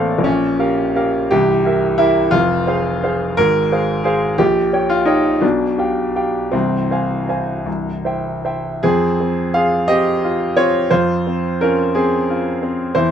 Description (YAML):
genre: classical, romantic character piece for solo piano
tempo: 50-62 BPM (dotted quarters)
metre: 6/8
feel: rubato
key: F minor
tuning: A4 = 440 Hz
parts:
  - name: clear baby grand piano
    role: solo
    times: 0.0-13.1 s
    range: C1 to Ab5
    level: -15 LUFS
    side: equal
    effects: none
room: light reverb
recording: close, detailed microphones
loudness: -15 LUFS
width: side -8 dB against mid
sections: 0.0-8.8 A section; 8.8-13.1 B section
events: none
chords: 0.3 Gm7b5/Bb; 1.3 C7; 2.3 Fm; 3.4 Fm/Ab; 4.4 Gdim/Bb; 5.4 G7/B; 6.5 Fm/C; 7.7 C; 8.8 Fm; 10.9 Dbmaj7/F